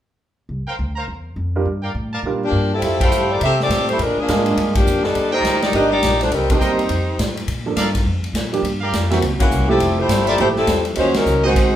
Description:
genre	jazz, big band swing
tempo	206 BPM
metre	4/4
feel	swing 62% on 8ths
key	F major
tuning	A4 = 440 Hz
part	upright bass	bass	0.5-11.5 s	F1 to C3	-23 LUFS	equal	none
part	bright trumpet section	stabs	0.7-11.5 s	F4 to Bb5	-25 LUFS	right 1 dB	none
part	warm baby grand piano	accompaniment	1.6-11.8 s	Eb3 to E5	-22 LUFS	right 3 dB	none
part	warm saxophone section	melody	2.4-7.3, 9.4-11.8 s	Fb3 to E5	-18 LUFS	left 1 dB	none
part	swinging big-band drum kit	drums	2.8-11.6 s	crash cymbal, hi-hat, kick drum, ride cymbal, snare drum	-22 LUFS	equal	none
room	wet large studio reverb, RT60 0.9 s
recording	band playing live in one room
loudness	-16 LUFS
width	side -11 dB against mid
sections	0.5-2.8 A section; 2.8-11.8 B section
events	band accent 3.0, 4.7, 6.5, 9.4, 11.1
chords	0.5 C7sus4; 1.7 Gm7; 2.8 Fmaj9; 4.0 Bb7; 5.2 Ebmaj7; 6.3 Cm7; 6.9 F7; 7.5 Bbmaj7; 8.6 Gm7; 9.2 Gb7#11; 9.8 Fmaj9; 11.0 Ebm7

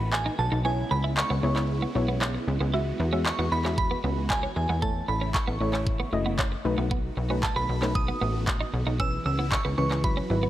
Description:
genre	dance-pop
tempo	115 BPM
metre	4/4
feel	straight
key	unclear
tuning	A4 = 439 Hz
part	glassy synth bell	melody	0.0-10.5 s	G#5 to E6	-31 LUFS	right 3 dB	chorus, tremolo, tape echo
part	soft round pluck	accompaniment	0.0-10.5 s	E3 to E5	-32 LUFS	left 2 dB	chorus, sidechain pumping
part	supersaw chords	sustained chords	0.0-10.5 s	C#3 to F#4	-36 LUFS	right 1 dB	phaser, sidechain pumping
part	plucky analog bass	bass	0.0-10.5 s	F#1 to E2	-28 LUFS	equal	sidechain pumping
part	pop drum kit	drums	0.1-10.2 s	handclaps, kick drum	-29 LUFS	equal	none
part	twelve-string electric guitar	riff	0.3-10.5 s	A3 to E4	-34 LUFS	right 4 dB	wide subtle chorus
room	light reverb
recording	none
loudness	-24 LUFS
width	side -13 dB against mid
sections	0.0-10.5 A section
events	kick muted 2.7-3.8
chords	0.0 B7; 0.7 C#m7; 2.7 Eadd9; 4.8 A; 6.7 B7; 9.0 C#m7

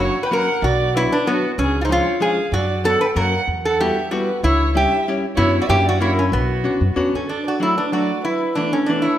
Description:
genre	musette waltz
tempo	189 BPM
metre	3/4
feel	swing 54% on 8ths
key	B minor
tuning	A4 = 441 Hz
part	metal-body resonator slide guitar	melody	0.0-9.2 s	B3 to B4	-19 LUFS	equal	none
part	dark violin	second line	0.0-9.2 s	F#4 to G5	-25 LUFS	right 3 dB	none
part	archtop guitar, miked and amplified	accompaniment	0.0-9.1 s	E3 to G4	-24 LUFS	left 2 dB	none
part	upright bass	bass	0.0-7.3 s	B1 to F#2	-22 LUFS	equal	none
room	wet recital hall reverb, RT60 1.4 s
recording	none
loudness	-16 LUFS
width	side -11 dB against mid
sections	0.0-7.3 A section; 7.3-9.2 B section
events	none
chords	0.0 F#; 0.6 Bm; 1.6 C#; 2.5 Bm/F#; 3.2 F#; 3.5 Emadd9; 4.4 C#dim; 5.4 F#7sus4; 5.7 F#7; 6.3 Bmadd9; 7.3 D; 8.3 E7sus4

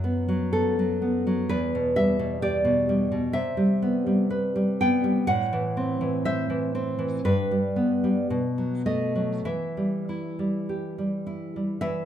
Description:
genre	romantic piece for solo classical guitar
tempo	47-66 BPM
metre	2/4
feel	rubato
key	E minor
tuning	A4 = 440 Hz
part	nylon-string guitar	solo	0.0-12.1 s	E2 to G5	-23 LUFS	equal	none
room	moderate recital hall reverb, RT60 1.6 s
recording	minimal, uncompressed stereo recording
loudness	-23 LUFS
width	side -10 dB against mid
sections	0.0-11.8 A section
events	none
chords	0.0 B5/F#; 1.5 Em; 3.3 Cmaj7; 5.3 Am; 7.2 G; 8.3 B7; 9.5 Em

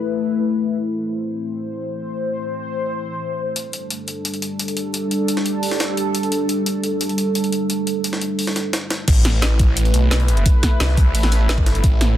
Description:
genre	dark technical drum and bass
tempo	174 BPM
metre	4/4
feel	straight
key	A minor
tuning	A4 = 441 Hz
part	sweeping resonant pad	sustained chords	0.0-12.2 s	G3 to C5	-22 LUFS	equal	chorus, sidechain pumping
part	jungle sampler-style drum kit	drums	3.6-12.1 s	hi-hat, snare drum	-25 LUFS	left 1 dB	high-pass filter on hats, high-pass filter on snare
part	snarling distorted saw bass	bass	9.1-12.2 s	G1 to C2	-17 LUFS	equal	distortion, tube saturation
part	drum and bass drum kit	drums	9.1-12.1 s	crash cymbal, hi-hat, snare drum	-23 LUFS	equal	overdrive
part	electronic kick drum	drums	9.1-11.9 s	none	-16 LUFS	equal	overdrive
room	moderate lush hall reverb, RT60 2.0 s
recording	dense, heavily limited modern master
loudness	-18 LUFS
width	side -12 dB against mid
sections	0.0-9.1 A section; 9.1-12.2 B section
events	drop 9.1-12.2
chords	0.0 Amadd9; 3.6 G5; 9.1 Amadd9

